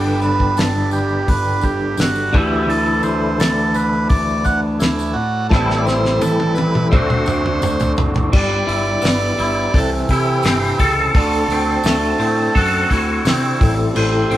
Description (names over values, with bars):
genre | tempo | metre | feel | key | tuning
psychedelic rock | 85 BPM | 4/4 | straight | unclear | A4 = 440 Hz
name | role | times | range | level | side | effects
overdriven combo organ | melody | 0.0-14.4 s | E4 to F#5 | -21 LUFS | right 2 dB | phaser
hand-pumped harmonium | sustained chords | 0.0-14.4 s | D3 to C6 | -28 LUFS | right 3 dB | none
twangy electric guitar | riff | 0.0-14.4 s | G2 to A4 | -19 LUFS | left 1 dB | rotary speaker
fuzz picked electric bass | bass | 0.0-14.4 s | F#1 to C3 | -22 LUFS | equal | overdrive
tambourine | percussion | 0.2-13.4 s | none | -38 LUFS | left 8 dB | none
damped 70s drum kit | drums | 0.4-14.4 s | crash cymbal, hi-hat, kick drum, snare drum, toms | -19 LUFS | equal | none
room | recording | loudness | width
moderate large studio reverb, RT60 0.9 s | band playing live in one room | -14 LUFS | side -13 dB against mid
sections
0.0-8.3 A section; 8.3-14.4 B section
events
drum fill 5.5-8.3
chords
0.0 G; 2.3 Dsus2; 5.5 Am7; 6.9 D7; 8.3 G6; 9.7 C6; 11.1 D7; 13.6 Am7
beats
0.58 1.28 1.99 | 2.69 3.40 4.10 4.80 | 5.51 6.21 6.92 7.62 | 8.32 9.03 9.73 10.44 | 11.14 11.85 12.55 13.26 | 13.96